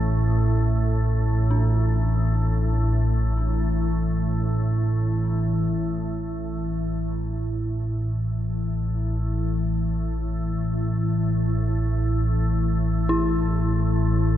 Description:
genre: dark ambient drone.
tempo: free time.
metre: none.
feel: none.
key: unclear.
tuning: A4 = 441 Hz.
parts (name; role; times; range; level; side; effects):
dark detuned synth bell; arpeggios; 0.0-14.4 s; D4 to G4; -30 LUFS; left 1 dB; chorus, diffuse ambient delay.
organ-like drone; drone; 0.0-14.4 s; A1 to A2; -21 LUFS; equal; ensemble chorus, built-in reverb.
room: wet cathedral reverb, RT60 6.1 s.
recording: none.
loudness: -21 LUFS.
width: side -12 dB against mid.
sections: 0.0-6.8 A section; 6.8-14.4 B section.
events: none.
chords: 0.0 G5/A; 6.8 A5.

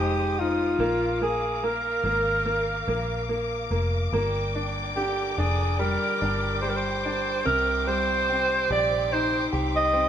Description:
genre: pop ballad.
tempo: 72 BPM.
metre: 4/4.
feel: straight.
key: unclear.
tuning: A4 = 440 Hz.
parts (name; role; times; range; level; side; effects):
mellow alto saxophone; melody; 0.0-10.1 s; F4 to Eb5; -25 LUFS; right 2 dB; none.
clear grand piano; accompaniment; 0.0-10.1 s; C3 to G4; -29 LUFS; left 1 dB; none.
warm studio string section; sustained chords; 0.0-10.1 s; Eb4 to Eb6; -32 LUFS; left 3 dB; none.
vintage muted fingered electric bass; bass; 0.0-10.1 s; F1 to C2; -30 LUFS; equal; none.
room: moderate stone room reverb, RT60 1.1 s.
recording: band playing live in one room.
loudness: -23 LUFS.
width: side -9 dB against mid.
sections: 0.0-10.1 A section.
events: none.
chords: 0.0 Ab; 0.8 Bb7; 4.1 Gm; 7.4 Cmadd9.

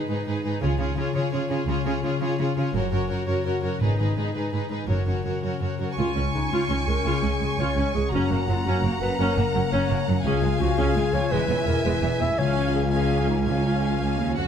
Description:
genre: cinematic.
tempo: 112 BPM (dotted quarters).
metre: 6/8.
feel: straight.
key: Db mixolydian.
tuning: A4 = 440 Hz.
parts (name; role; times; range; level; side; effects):
rich chamber violin section; melody; 0.0-14.4 s; Cb5 to Db6; -33 LUFS; left 2 dB; none.
rich symphonic violin section; second line; 0.0-14.5 s; Gb4 to Ab5; -33 LUFS; equal; none.
rich symphonic viola section; accompaniment; 0.0-14.4 s; E3 to Gb4; -30 LUFS; right 2 dB; none.
concert harp; arpeggios; 0.0-14.5 s; Gb2 to Db5; -29 LUFS; left 12 dB; none.
warm symphonic cello section; bass; 0.1-14.5 s; Db2 to Db3; -28 LUFS; right 3 dB; none.
warm symphonic double bass section; bass; 0.6-14.3 s; E1 to Db2; -28 LUFS; right 3 dB; none.
timpani; percussion; 3.8-4.3, 12.4-14.0 s; Ab2 to Db3; -31 LUFS; left 1 dB; none.
mellow clarinet; second line; 5.8-14.4 s; Eb4 to E5; -29 LUFS; left 1 dB; none.
mellow French horn section; sustained chords; 6.0-14.3 s; Ab3 to F4; -32 LUFS; left 3 dB; none.
room: moderate concert hall reverb, RT60 1.7 s.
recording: none.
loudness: -22 LUFS.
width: side -8 dB against mid.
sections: 0.0-6.0 A section; 6.0-14.5 B section.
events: build-up 0.0-6.0.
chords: 0.0 Abm; 0.6 Db; 2.7 Gb; 3.8 Abm; 4.9 Gb; 6.0 Db; 8.1 Gb; 10.3 Db; 11.3 E; 12.4 Db.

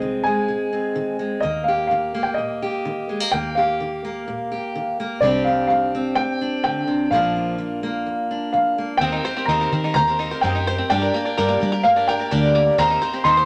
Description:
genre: folk.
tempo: 127 BPM.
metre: 4/4.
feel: straight.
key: Eb major.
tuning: A4 = 440 Hz.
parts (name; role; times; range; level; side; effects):
dark upright piano; melody; 0.0-13.5 s; D5 to C6; -24 LUFS; equal; none.
fingerpicked steel-string acoustic guitar; accompaniment; 0.0-9.0 s; Eb2 to G4; -26 LUFS; equal; none.
fingered electric bass; bass; 0.0-13.4 s; Bb1 to G3; -28 LUFS; equal; none.
picked twelve-string acoustic guitar; accompaniment; 9.0-13.5 s; C3 to D5; -26 LUFS; equal; none.
bluegrass banjo; arpeggios; 9.0-13.5 s; Bb3 to C5; -27 LUFS; equal; none.
room: moderate studio reverb, RT60 0.8 s.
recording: none.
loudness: -21 LUFS.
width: mono.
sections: 0.0-9.0 A section; 9.0-13.5 B section.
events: none.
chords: 0.0 Ab/C; 1.4 Ebadd9; 5.2 Csus2; 7.1 Bb; 9.0 Eb6; 10.9 Gm; 12.8 Eb6.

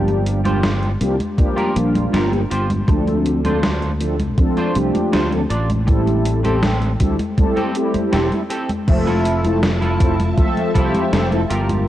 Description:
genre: vaporwave.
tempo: 80 BPM.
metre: 4/4.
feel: straight.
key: F major.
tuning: A4 = 440 Hz.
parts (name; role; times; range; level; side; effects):
mellow synth brass; accompaniment; 0.0-11.4 s; F3 to E5; -20 LUFS; equal; analog chorus, analog delay.
sustaining fretless electric bass; bass; 0.0-11.9 s; E1 to D2; -20 LUFS; equal; ensemble chorus.
semi-hollow electric guitar; riff; 0.1-11.9 s; C4 to D5; -26 LUFS; right 1 dB; analog chorus, vintage 12-bit sampler grit, analog delay.
gated 80s digital drum machine; drums; 0.1-11.8 s; congas, crash cymbal, hi-hat, snare drum; -23 LUFS; equal; gated reverb, gated reverb snare.
electronic kick drum; drums; 1.4-10.9 s; none; -16 LUFS; equal; none.
soft string machine; sustained chords; 8.9-11.9 s; F3 to A5; -27 LUFS; equal; ensemble chorus.
room: light reverb, digital ambience.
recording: cassette tape.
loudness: -15 LUFS.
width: side -13 dB against mid.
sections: 0.0-8.9 A section; 8.9-11.9 B section.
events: break 8.1-8.9.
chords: 0.0 Gm7; 2.9 Dm7; 5.9 Am7; 8.9 Fmaj7.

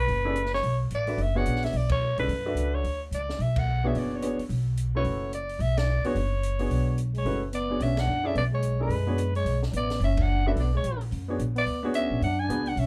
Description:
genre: modal jazz.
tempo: 218 BPM.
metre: 4/4.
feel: swing 60% on 8ths.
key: B dorian.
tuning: A4 = 441 Hz.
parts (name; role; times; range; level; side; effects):
growling soprano saxophone; melody; 0.0-12.9 s; B4 to G#5; -32 LUFS; equal; none.
upright bass; bass; 0.0-12.9 s; F#1 to F#2; -30 LUFS; equal; none.
open jazz drum kit; drums; 0.1-12.8 s; hi-hat, kick drum, ride cymbal, snare drum; -39 LUFS; equal; none.
clear grand piano; accompaniment; 0.2-12.6 s; A3 to E5; -34 LUFS; equal; none.
warm trombone; second line; 7.1-12.9 s; G#3 to D4; -36 LUFS; equal; none.
room: light reverb.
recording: dark, warm production.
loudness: -27 LUFS.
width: mono.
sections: 0.0-12.9 A section.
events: band accent 1.9, 3.5, 5.7, 7.9, 10.2.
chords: 0.0 Bm69.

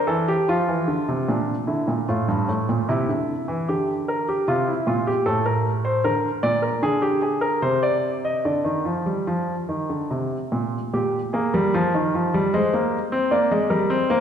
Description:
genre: classical, baroque-style two-part invention for grand piano.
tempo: 75 BPM.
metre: 3/4.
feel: straight.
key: Bb major, Eb major from 6.0 s.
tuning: A4 = 440 Hz.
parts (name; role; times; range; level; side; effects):
warm grand piano; solo; 0.0-14.2 s; G2 to Eb5; -20 LUFS; equal; none.
room: wet concert hall reverb, RT60 1.7 s.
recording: heard from further back in the room.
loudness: -20 LUFS.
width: side -8 dB against mid.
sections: 0.0-1.3 A section; 1.3-10.9 B section; 10.9-14.2 C section.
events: none.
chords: 0.5 F5; 1.3 Bb; 2.9 Cadd9; 3.7 Gm/D; 5.2 Am; 6.0 Bb; 7.6 Cmadd9; 8.4 Bb/D (rootless); 10.9 Eb/Bb (rootless); 12.5 Ab; 13.3 Bb7.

